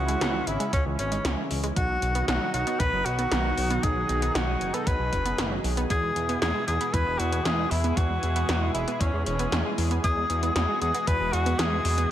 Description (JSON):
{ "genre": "synthwave", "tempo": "116 BPM", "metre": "4/4", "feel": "straight", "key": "E major", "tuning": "A4 = 440 Hz", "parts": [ { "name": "breathy tenor saxophone", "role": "melody", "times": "0.0-12.1 s", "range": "C#4 to B4", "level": "-28 LUFS", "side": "left 1 dB", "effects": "digital delay" }, { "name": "chorused pulse-width pad", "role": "sustained chords", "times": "0.0-12.1 s", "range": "B2 to G#4", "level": "-33 LUFS", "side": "equal", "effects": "sidechain pumping" }, { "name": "chorused synth bass", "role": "bass", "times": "0.0-12.1 s", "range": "E1 to E2", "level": "-28 LUFS", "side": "equal", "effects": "tube saturation" }, { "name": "wide unison pluck", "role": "arpeggios", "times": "0.1-12.1 s", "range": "C#3 to B3", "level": "-34 LUFS", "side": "right 3 dB", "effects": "cassette tape, ping-pong delay" }, { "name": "80s electronic pad drums", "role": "drums", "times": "0.1-12.1 s", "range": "hi-hat, snare drum", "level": "-31 LUFS", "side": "equal", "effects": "none" }, { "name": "electronic kick drum", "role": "drums", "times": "0.7-11.2 s", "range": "none", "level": "-27 LUFS", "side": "equal", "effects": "none" } ], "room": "light reverb, digital ambience", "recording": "none", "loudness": "-23 LUFS", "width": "side -11 dB against mid", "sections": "0.0-12.1 A section", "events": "none", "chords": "0.0 C#m; 1.8 B; 5.9 E" }